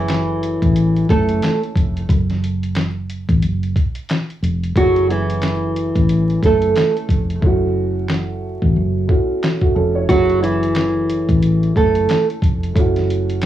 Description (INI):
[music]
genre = hip hop, boom-bap hip-hop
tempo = 90 BPM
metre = 4/4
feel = swing 58% on 16ths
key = F# minor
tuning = A4 = 440 Hz
[part]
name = nylon-string guitar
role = melody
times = 0.0-12.3 s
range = E3 to A4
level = -18 LUFS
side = right 2 dB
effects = high-pass filter, low-pass filter, analog delay
[part]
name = dark upright piano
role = accompaniment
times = 0.0-13.5 s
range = A3 to C#5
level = -24 LUFS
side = right 2 dB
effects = high-pass filter, low-pass filter
[part]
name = fingered electric bass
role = bass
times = 0.0-13.5 s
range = E#1 to A1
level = -19 LUFS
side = equal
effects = none
[part]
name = dusty soul sampler-style drum kit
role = drums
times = 0.1-13.5 s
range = handclaps, hi-hat, kick drum, snare drum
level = -19 LUFS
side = equal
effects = cassette tape
[sound]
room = light reverb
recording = home recording on cassette, vinyl crackle, small room ambience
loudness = -15 LUFS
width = side -12 dB against mid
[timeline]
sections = 0.0-13.5 A section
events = break 2.1-4.8; hi-hats muted 7.4-10.1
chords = 0.0 F#m7; 2.1 N.C.; 4.8 F#m7; 7.4 A6; 10.1 F#m7; 12.8 A6